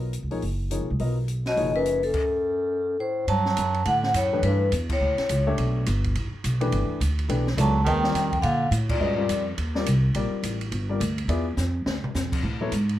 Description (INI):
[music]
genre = modal jazz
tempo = 210 BPM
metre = 4/4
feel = swing 61% on 8ths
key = unclear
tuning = A4 = 440 Hz
[part]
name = warm baby grand piano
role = accompaniment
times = 0.0-2.0, 4.3-12.7 s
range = E3 to E5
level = -29 LUFS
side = left 3 dB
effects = none
[part]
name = upright bass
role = bass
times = 0.0-13.0 s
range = F#1 to Bb2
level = -25 LUFS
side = equal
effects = none
[part]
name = open jazz drum kit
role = drums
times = 0.1-12.9 s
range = crash cymbal, hi-hat, kick drum, ride cymbal, snare drum, toms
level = -32 LUFS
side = equal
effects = none
[part]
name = vibraphone with medium hard mallets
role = melody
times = 1.5-5.4, 7.6-9.4 s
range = A4 to A5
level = -25 LUFS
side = left 2 dB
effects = none
[part]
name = bright bass clarinet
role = second line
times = 1.5-5.4, 7.6-9.4 s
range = F#2 to F#3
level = -29 LUFS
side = right 3 dB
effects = none
[sound]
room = light reverb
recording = none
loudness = -22 LUFS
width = side -13 dB against mid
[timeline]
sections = 0.0-3.3 A section; 3.3-12.4 B section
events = band accent 4.9, 8.9; drum fill 11.6-12.1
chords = 0.0 Bmaj9; 2.1 N.C.; 3.3 Gmaj9; 7.9 Ebmaj9; 11.3 E7b9; 12.4 Amaj9